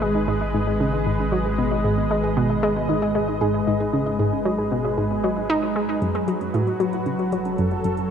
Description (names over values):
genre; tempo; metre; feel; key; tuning
ambient, sequencer-driven space music; 115 BPM; 4/4; straight; G# minor; A4 = 442 Hz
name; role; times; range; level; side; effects
lush unison pad; sustained chords; 0.0-8.1 s; F#3 to D#5; -25 LUFS; equal; chorus
analog pluck; riff; 0.0-8.0 s; F#2 to D#4; -23 LUFS; equal; chorus, analog delay
analog drone; bass; 0.0-8.1 s; F#1 to G#1; -30 LUFS; equal; chorus
soft round pluck; arpeggios; 0.1-5.8 s; G#4 to D#6; -28 LUFS; equal; chorus, auto-pan, analog delay
electronic hi-hat and congas; percussion; 6.0-8.1 s; none; -49 LUFS; left 3 dB; overdrive, analog delay
room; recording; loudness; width
wet cathedral reverb, RT60 5.3 s; in a vast, echoing space; -20 LUFS; side -8 dB against mid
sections
0.0-6.0 A section; 6.0-8.1 B section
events
filter sweep on synth arpeggio sound 0.0-6.0, 6.0-8.1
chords
0.0 G#m; 6.0 F#m